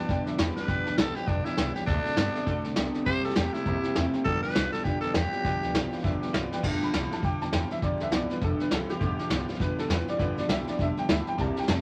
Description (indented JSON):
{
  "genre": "rockabilly",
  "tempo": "202 BPM",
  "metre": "4/4",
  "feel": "swing 60% on 8ths",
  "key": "G mixolydian",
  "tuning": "A4 = 444 Hz",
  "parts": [
    { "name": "growling tenor saxophone", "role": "melody", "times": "0.0-6.0 s", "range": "D4 to C5", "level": "-33 LUFS", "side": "equal", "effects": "none" },
    { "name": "honky-tonk upright piano", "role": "accompaniment", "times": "0.0-11.8 s", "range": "E3 to B5", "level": "-38 LUFS", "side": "equal", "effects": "none" },
    { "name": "picked steel-string acoustic guitar", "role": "accompaniment", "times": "0.0-11.8 s", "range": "G2 to A4", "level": "-39 LUFS", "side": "equal", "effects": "none" },
    { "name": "electric guitar through a small old amp", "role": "riff", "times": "0.0-11.8 s", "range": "G2 to B3", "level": "-35 LUFS", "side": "equal", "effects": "phaser" },
    { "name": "upright bass", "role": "bass", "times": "0.1-11.8 s", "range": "F1 to C3", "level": "-36 LUFS", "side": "equal", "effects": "none" },
    { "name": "vintage brush drum kit", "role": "drums", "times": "0.1-11.8 s", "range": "crash cymbal, hi-hat, kick drum, snare drum", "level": "-32 LUFS", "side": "equal", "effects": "none" }
  ],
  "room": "light reverb",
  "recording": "vinyl crackle",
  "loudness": "-28 LUFS",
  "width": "mono",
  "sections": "0.0-6.6 A section; 6.6-11.8 B section",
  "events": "honky-tonk piano solo 6.6-11.8",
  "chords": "0.0 G7; 1.9 D7; 3.1 C7; 4.3 G7",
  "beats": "0.09 0.39 | 0.69 0.98 1.28 1.58 | 1.88 2.17 2.47 2.77 | 3.07 3.36 3.66 3.96 | 4.26 4.55 4.85 5.15 | 5.45 5.74 6.04 6.34 | 6.63 6.93 7.23 7.53 | 7.82 8.12 8.42 8.71 | 9.01 9.31 9.61 9.90 | 10.20 10.50 10.79 11.09 | 11.39 11.68"
}